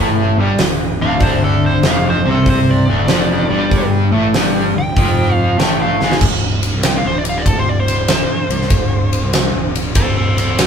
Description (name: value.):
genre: blues rock power trio and southern rock.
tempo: 96 BPM.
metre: 4/4.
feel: swing 67% on 8ths.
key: D minor.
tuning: A4 = 441 Hz.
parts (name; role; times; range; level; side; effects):
crunchy overdriven guitar; riff; 0.0-6.2 s; D2 to C4; -16 LUFS; left 1 dB; harmonic tremolo.
fuzz picked electric bass; bass; 0.0-10.7 s; D1 to C2; -22 LUFS; equal; overdrive.
huge arena drum kit; drums; 0.6-10.7 s; crash cymbal, hi-hat, kick drum, ride cymbal, snare drum; -15 LUFS; right 1 dB; none.
nasal lead guitar with a parked wah; melody; 1.0-10.7 s; C4 to G5; -20 LUFS; left 1 dB; overdrive.
room: moderate studio reverb, RT60 0.6 s.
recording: band playing live in one room.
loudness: -12 LUFS.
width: side -7 dB against mid.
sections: 0.0-6.2 A section; 6.2-10.7 B section.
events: drum fill 5.9-6.2; lead electric guitar solo 6.2-10.7.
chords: 0.0 Dm; 6.2 D5.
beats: 0.58 | 1.21 1.83 2.46 3.09 | 3.71 4.34 4.96 5.59 | 6.21 6.84 7.46 8.09 | 8.71 9.34 9.96 10.58.